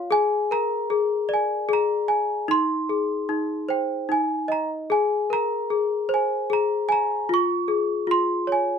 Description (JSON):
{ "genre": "children's music, lullaby", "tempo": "75 BPM", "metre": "3/4", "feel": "rubato", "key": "Ab major", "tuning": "A4 = 442 Hz", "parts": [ { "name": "worn celesta", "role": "solo", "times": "0.0-8.8 s", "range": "Eb4 to Db6", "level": "-21 LUFS", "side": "left 1 dB", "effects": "none" } ], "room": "moderate small room reverb, RT60 0.5 s", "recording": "none", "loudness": "-21 LUFS", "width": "side -7 dB against mid", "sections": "0.0-8.8 A section", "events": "none", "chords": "0.1 Bb7; 2.5 Ab/Eb; 4.1 N.C.; 4.9 Abadd9; 7.3 Db" }